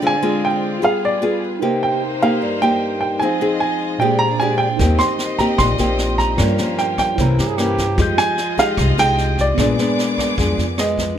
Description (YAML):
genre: bossa nova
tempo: 151 BPM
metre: 4/4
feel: straight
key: unclear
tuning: A4 = 441 Hz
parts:
  - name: nylon-string guitar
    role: accompaniment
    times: 0.0-11.2 s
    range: G2 to Ab4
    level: -21 LUFS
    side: left 2 dB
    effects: none
  - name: tine electric piano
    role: accompaniment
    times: 0.0-11.2 s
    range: Bb2 to G6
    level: -24 LUFS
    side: right 2 dB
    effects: medium stereo tremolo
  - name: warm studio violin section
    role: sustained chords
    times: 0.0-11.2 s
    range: Ab3 to D6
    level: -28 LUFS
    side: left 1 dB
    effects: none
  - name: dark baby grand piano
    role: melody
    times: 0.1-11.2 s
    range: D5 to C6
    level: -20 LUFS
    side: right 2 dB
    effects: none
  - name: upright bass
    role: bass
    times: 4.8-11.1 s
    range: Bb1 to G2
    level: -20 LUFS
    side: equal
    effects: none
  - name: jazz brush drum kit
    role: drums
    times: 4.8-11.0 s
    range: kick drum, rim click, snare drum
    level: -24 LUFS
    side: equal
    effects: none
  - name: clear trombone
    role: second line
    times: 7.4-8.1 s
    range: G4 to Ab4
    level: -23 LUFS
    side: right 2 dB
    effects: none
room: light reverb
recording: close, detailed microphones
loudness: -15 LUFS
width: side -9 dB against mid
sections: 0.0-11.2 A section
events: none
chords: 0.0 Dm7b5; 0.8 G7b9; 1.6 Cm7; 3.2 Fm7; 4.0 Bb13; 4.8 Eb6; 6.4 Gm7b5; 7.2 C7b9; 8.0 Fm9; 9.6 Bb7b9